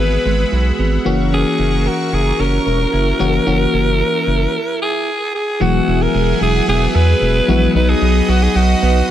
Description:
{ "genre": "pop", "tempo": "112 BPM", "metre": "4/4", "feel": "straight", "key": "unclear", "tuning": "A4 = 444 Hz", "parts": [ { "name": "raspy alto saxophone", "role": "melody", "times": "0.0-9.1 s", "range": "F#4 to B4", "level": "-19 LUFS", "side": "equal", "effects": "none" }, { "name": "FM electric piano", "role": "accompaniment", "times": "0.0-9.1 s", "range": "E3 to F#4", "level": "-19 LUFS", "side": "left 4 dB", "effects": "chorus" }, { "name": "phased analog pad", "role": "sustained chords", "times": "0.0-9.1 s", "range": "G#4 to D#6", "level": "-24 LUFS", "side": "right 1 dB", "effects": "phaser, chorus" }, { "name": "direct-recorded clean electric guitar", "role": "riff", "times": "0.0-9.1 s", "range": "F#3 to A#4", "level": "-23 LUFS", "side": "right 6 dB", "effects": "lush chorus" }, { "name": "round analog bass", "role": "bass", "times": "0.0-9.0 s", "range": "E1 to E2", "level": "-16 LUFS", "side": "equal", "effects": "none" } ], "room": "light reverb", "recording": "none", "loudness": "-13 LUFS", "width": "side -11 dB against mid", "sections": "0.0-5.6 A section; 5.6-9.1 B section", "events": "stop 4.5-5.6", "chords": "0.0 Eadd9/G#; 1.1 F#7; 5.6 Eadd9; 7.8 B", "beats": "0.25 0.79 | 1.32 1.86 2.39 2.93 | 3.46 4.00 4.54 5.07 | 5.61 6.14 6.68 7.21 | 7.75 8.29 8.82" }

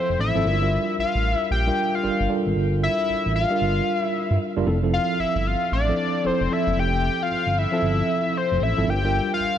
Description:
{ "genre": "R&B, new jack swing", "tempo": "114 BPM", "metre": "4/4", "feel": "swing 63% on 16ths", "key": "F major", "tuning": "A4 = 439 Hz", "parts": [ { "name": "fat analog lead", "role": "melody", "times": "0.0-9.6 s", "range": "C5 to G5", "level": "-24 LUFS", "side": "left 3 dB", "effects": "chorus, ping-pong delay" }, { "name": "mellow tine electric piano", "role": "accompaniment", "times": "0.0-9.6 s", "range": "F3 to Bb4", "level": "-25 LUFS", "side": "right 2 dB", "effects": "medium stereo tremolo" }, { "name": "smooth synth bass", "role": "bass", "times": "0.1-9.5 s", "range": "F1 to G2", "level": "-24 LUFS", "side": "equal", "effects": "none" } ], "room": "light reverb, digital ambience", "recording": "none", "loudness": "-20 LUFS", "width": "side -10 dB against mid", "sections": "0.0-9.6 A section", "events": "none", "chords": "0.5 Gm7; 4.7 Fmaj7; 8.9 Gm7", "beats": "| 0.45 0.98 1.51 2.03 | 2.56 3.08 3.61 4.14 | 4.66 5.19 5.72 6.24 | 6.77 7.30 7.82 8.35 | 8.88 9.40" }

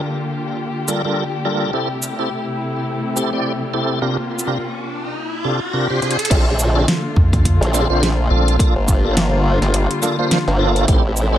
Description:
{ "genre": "glitch hop", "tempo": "105 BPM", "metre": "4/4", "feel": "swing 58% on 16ths", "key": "unclear", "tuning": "A4 = 440 Hz", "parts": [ { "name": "muted chamber string section", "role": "sustained chords", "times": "0.0-11.4 s", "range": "C3 to G4", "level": "-23 LUFS", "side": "left 2 dB", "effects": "sidechain pumping" }, { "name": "tonewheel organ", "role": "stabs", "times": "0.9-11.4 s", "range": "C3 to D5", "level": "-22 LUFS", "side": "right 1 dB", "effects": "chorus vibrato, fast rotary speaker, sidechain pumping, digital delay" }, { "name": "pop drum kit", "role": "drums", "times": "0.9-11.3 s", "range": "crash cymbal, hi-hat, shaker, snare drum", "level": "-21 LUFS", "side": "right 1 dB", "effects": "small room ambience" }, { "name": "riser", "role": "sound effects", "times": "3.4-6.3 s", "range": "none", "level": "-27 LUFS", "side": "equal", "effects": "none" }, { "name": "formant-sweep wobble bass", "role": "bass", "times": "6.3-11.4 s", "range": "G1 to Bb1", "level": "-17 LUFS", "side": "equal", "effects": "chorus" }, { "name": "electronic kick drum", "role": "drums", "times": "6.3-11.0 s", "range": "none", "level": "-16 LUFS", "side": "equal", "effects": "small room ambience" }, { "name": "rubbery square bass", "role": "bass", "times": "7.2-8.6 s", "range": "Bb1 to F2", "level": "-15 LUFS", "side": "equal", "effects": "none" } ], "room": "light reverb", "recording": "none", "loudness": "-16 LUFS", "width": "side -12 dB against mid", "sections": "0.0-6.3 A section; 6.3-11.4 B section", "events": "riser 3.4-6.3; drum fill 6.0; drop 6.3-11.4", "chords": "0.0 Gm7; 1.7 Am7; 4.0 C7sus4; 6.3 Bbmaj7; 8.6 Gm7; 10.9 Am7", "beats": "0.02 0.59 1.16 | 1.74 2.31 2.88 3.45 | 4.02 4.59 5.16 5.74 | 6.31 6.88 7.45 8.02 | 8.59 9.16 9.74 10.31 | 10.88" }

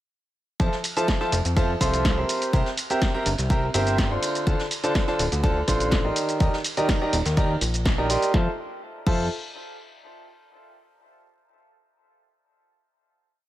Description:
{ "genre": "piano house", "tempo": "124 BPM", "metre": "4/4", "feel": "straight", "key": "F major", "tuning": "A4 = 437 Hz", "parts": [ { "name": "clear concert grand piano", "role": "riff", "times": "0.6-9.2 s", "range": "D3 to C6", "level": "-25 LUFS", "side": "right 1 dB", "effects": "sidechain pumping, dub echo" }, { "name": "fat analog bass", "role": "bass", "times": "0.6-9.3 s", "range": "D1 to F2", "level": "-26 LUFS", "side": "equal", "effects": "sidechain pumping" }, { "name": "electronic kick drum", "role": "drums", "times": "0.6-9.2 s", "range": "none", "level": "-24 LUFS", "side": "equal", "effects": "studio reverb" }, { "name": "punchy analog drum machine", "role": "drums", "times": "0.6-9.2 s", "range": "crash cymbal, hi-hat, shaker, snare drum", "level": "-29 LUFS", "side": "equal", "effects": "studio reverb" }, { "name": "vintage brush drum kit", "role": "drums", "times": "0.6-8.2 s", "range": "ride cymbal, snare drum", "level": "-38 LUFS", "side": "right 2 dB", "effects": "high-pass filter on cymbals, studio reverb, high-pass filter on snare, high-pass filter on room" } ], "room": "small room ambience", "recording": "none", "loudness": "-21 LUFS", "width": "side -14 dB against mid", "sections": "0.6-8.3 drop; 8.3-10.3 final chord", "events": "drop 0.6-8.3; band accent 7.9", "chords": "0.6 Fmaj7; 2.3 C7; 4.2 Dm7; 6.2 Ebmaj7; 8.3 Fmaj7", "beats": "| 0.60 1.08 1.56 2.05 | 2.53 3.02 3.50 3.98 | 4.47 4.95 5.44 5.92 | 6.40 6.89 7.37 7.86 | 8.34 8.82" }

